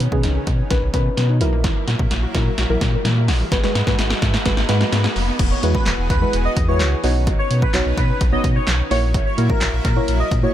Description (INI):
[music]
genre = dance-pop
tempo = 128 BPM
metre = 4/4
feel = straight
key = B major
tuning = A4 = 440 Hz
[part]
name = lush unison pad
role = sustained chords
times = 0.0-10.5 s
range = D#3 to B4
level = -30 LUFS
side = equal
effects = chorus, sidechain pumping
[part]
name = sub bass with octave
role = bass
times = 0.0-10.5 s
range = E1 to B2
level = -20 LUFS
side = equal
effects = sidechain pumping
[part]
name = punchy analog drum machine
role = drums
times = 0.0-10.4 s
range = crash cymbal, handclaps, hi-hat, kick drum, snare drum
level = -20 LUFS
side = equal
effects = dub echo
[part]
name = riser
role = sound effects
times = 0.9-5.4 s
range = none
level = -31 LUFS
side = equal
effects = none
[part]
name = deep mellow chord stab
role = accompaniment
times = 0.1-10.5 s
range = D#3 to C#5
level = -24 LUFS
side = equal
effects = chorus, sidechain pumping, dub echo
[part]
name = wide unison pluck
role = arpeggios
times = 0.1-5.4 s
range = C#3 to G#4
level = -32 LUFS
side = left 2 dB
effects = none
[part]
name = airy dreamy lead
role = melody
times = 5.5-10.5 s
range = A#4 to D#5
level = -25 LUFS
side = equal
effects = chorus, dub echo
[sound]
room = digital ambience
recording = echo-heavy mix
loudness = -16 LUFS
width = side -12 dB against mid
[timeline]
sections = 0.0-5.4 A section; 5.4-10.5 B section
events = build-up 0.0-5.4; drum fill 0.0-5.4; riser 0.9-5.4; drop 5.4-10.5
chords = 0.0 Badd9; 1.4 F#7/A#; 3.5 G#m7; 5.4 Eadd9; 7.0 Badd9; 8.9 F#7/A#